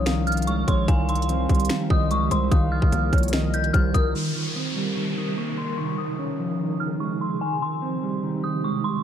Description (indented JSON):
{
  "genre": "hip hop, trap",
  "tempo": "147 BPM",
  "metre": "4/4",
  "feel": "half-time",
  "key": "unclear",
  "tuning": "A4 = 440 Hz",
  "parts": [
    { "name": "dark detuned synth bell", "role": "melody", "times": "0.0-9.0 s", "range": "Ab5 to G6", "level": "-29 LUFS", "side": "equal", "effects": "chorus, phaser, low-pass filter" },
    { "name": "warm velvety synth lead", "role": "second line", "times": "0.0-4.1 s", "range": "Bb4 to F5", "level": "-32 LUFS", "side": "left 3 dB", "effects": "chorus, ping-pong delay" },
    { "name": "mellow electric guitar", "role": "accompaniment", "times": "0.0-9.0 s", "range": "Eb3 to Db4", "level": "-26 LUFS", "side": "right 2 dB", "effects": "low-pass filter" },
    { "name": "granular cloud pad", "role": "sustained chords", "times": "0.0-9.0 s", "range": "C3 to Db5", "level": "-32 LUFS", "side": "equal", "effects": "built-in reverb, low-pass filter" },
    { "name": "distorted 808-style bass", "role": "bass", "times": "0.0-4.1 s", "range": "Bb1 to C2", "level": "-24 LUFS", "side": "equal", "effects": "distortion" },
    { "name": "trap drum kit", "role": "drums", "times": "0.1-4.0 s", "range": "finger snaps, hi-hat, kick drum, snare drum", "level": "-22 LUFS", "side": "equal", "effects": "none" },
    { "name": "downlifter", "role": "sound effects", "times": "4.1-7.4 s", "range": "none", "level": "-34 LUFS", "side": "equal", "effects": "none" }
  ],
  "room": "light reverb",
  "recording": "dark, warm production",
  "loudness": "-21 LUFS",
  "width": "side -9 dB against mid",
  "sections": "0.0-4.1 A section; 4.1-9.0 B section",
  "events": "filter sweep 4.1-9.0",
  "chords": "0.0 Dbadd9/C; 0.9 Abmaj7/C; 2.5 Ebadd9/C; 4.1 Cm7; 5.8 Dbadd9; 7.4 Abmaj7/C"
}